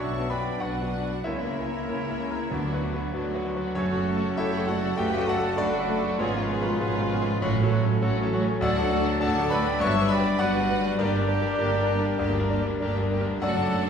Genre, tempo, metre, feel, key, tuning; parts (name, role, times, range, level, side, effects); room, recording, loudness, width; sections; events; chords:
classical, romantic movement for piano and orchestra; 98 BPM; 4/4; rubato; A4 = 441 Hz
bright concert grand piano; melody; 0.0-13.9 s; B1 to C#6; -28 LUFS; left 2 dB
warm symphonic violin section; melody; 0.0-13.9 s; C#4 to A4; -37 LUFS; left 2 dB
mellow cor anglais; second line; 0.0-13.9 s; C#4 to C#5; -36 LUFS; equal
small flute group; second line; 0.0-13.9 s; A4 to A5; -38 LUFS; left 2 dB
warm clarinet; second line; 0.0-13.9 s; D4 to B4; -37 LUFS; equal
warm symphonic violin section; second line; 0.0-13.9 s; C#5 to C#6; -38 LUFS; left 3 dB
dark studio viola section; accompaniment; 0.0-13.9 s; D3 to F#4; -35 LUFS; right 1 dB
mellow bassoon; accompaniment; 0.0-13.9 s; A3 to D4; -36 LUFS; equal
clear trombone section; sustained chords; 0.0-13.9 s; G2 to A#3; -35 LUFS; right 2 dB
dark French horn section; sustained chords; 0.0-13.9 s; Ab3 to B4; -36 LUFS; left 3 dB
clear trumpet section; stabs; 0.0-13.9 s; F4 to E5; -34 LUFS; right 1 dB
rich chamber cello section; bass; 0.0-13.9 s; D2 to D3; -32 LUFS; right 2 dB
warm chamber double bass section; bass; 0.0-13.9 s; F#1 to D2; -33 LUFS; right 4 dB
timpani; percussion; 2.5-3.4, 7.4-8.3 s; A2 to D3; -35 LUFS; equal
wet scoring stage reverb, RT60 1.6 s; heard from further back in the room; -23 LUFS; side -7 dB against mid
0.0-13.9 A section
0.0 Bm; 1.3 A#dim/C#; 2.5 Bm/D; 3.8 F#m; 6.2 Fdim/Ab; 7.4 F#m/A; 8.6 D; 9.8 Gmaj7; 11.0 Gm